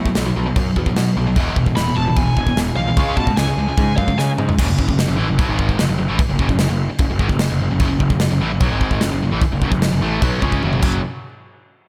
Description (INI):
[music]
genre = heavy metal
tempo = 149 BPM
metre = 4/4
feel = straight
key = F# minor from 4.6 s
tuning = A4 = 439 Hz
[part]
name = sludgy distorted guitar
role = riff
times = 0.0-11.0 s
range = E2 to C#4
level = -22 LUFS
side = equal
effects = overdrive
[part]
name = fuzz picked electric bass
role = bass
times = 0.0-11.0 s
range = E1 to C#3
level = -24 LUFS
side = equal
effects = overdrive
[part]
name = modern studio drum kit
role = drums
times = 0.1-10.9 s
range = crash cymbal, kick drum, snare drum, toms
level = -22 LUFS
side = equal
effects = none
[part]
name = high-gain lead guitar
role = melody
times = 1.8-4.3 s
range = E#5 to B5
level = -27 LUFS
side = equal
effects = distortion, slapback echo, digital delay
[sound]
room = light reverb, small room ambience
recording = none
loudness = -18 LUFS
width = mono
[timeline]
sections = 0.0-4.6 A section; 4.6-11.0 B section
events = lead electric guitar solo 0.0-4.6; drum fill 4.2-4.6, 10.6-11.0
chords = 0.0 B5; 1.4 E; 3.0 C#5; 4.6 F#m; 10.8 F#5; 11.0 N.C.